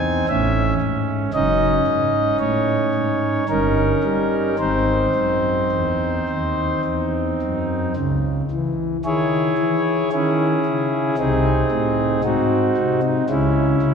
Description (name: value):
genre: classical, chorale-style piece for pipe organ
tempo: 56 BPM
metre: 3/4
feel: rubato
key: C# minor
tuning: A4 = 440 Hz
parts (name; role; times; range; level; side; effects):
- pipe organ, principal; solo; 0.0-13.9 s; F#1 to G#5; -17 LUFS; equal; none
room: wet church reverb, RT60 2.9 s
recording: none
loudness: -17 LUFS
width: side -6 dB against mid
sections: 0.0-8.0 A section; 8.0-13.9 B section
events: none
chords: 0.3 A; 1.3 D#m7b5/F#; 3.5 D#7/G; 4.6 G#; 8.0 C#m; 11.2 G#/B#; 13.3 C#m